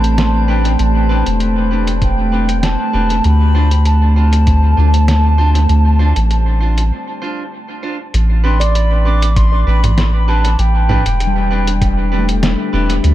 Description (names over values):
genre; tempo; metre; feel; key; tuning
ambient dub; 98 BPM; 4/4; swing 54% on 16ths; A minor; A4 = 441 Hz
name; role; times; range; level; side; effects
mellow hollow silver concert flute; melody; 0.0-12.4 s; G5 to D6; -22 LUFS; equal; dub echo
deep dark ambient pad; sustained chords; 0.0-13.1 s; A3 to G5; -21 LUFS; left 1 dB; chorus, built-in reverb
soft dub sub bass; bass; 0.0-13.1 s; E1 to D2; -12 LUFS; equal; none
lo-fi sampler-style drum kit; drums; 0.0-13.1 s; congas, hi-hat, snare drum; -22 LUFS; equal; dub echo
drifting glass-harmonics texture; texture; 0.0-6.9 s; C4 to C5; -28 LUFS; left 3 dB; chorus, built-in reverb
clean electric guitar; stabs; 0.5-12.9 s; C4 to C5; -24 LUFS; right 3 dB; dub echo
electronic kick drum; drums; 2.0-4.6, 9.4-11.9 s; none; -15 LUFS; equal; none
handpan; arpeggios; 8.6-13.1 s; G3 to D5; -22 LUFS; left 2 dB; analog delay
room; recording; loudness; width
digital ambience; echo-heavy mix; -11 LUFS; side -14 dB against mid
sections
0.0-8.1 A section; 8.1-13.1 B section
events
break 6.9-8.1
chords
0.0 Am11; 3.2 Dm7; 8.1 Am11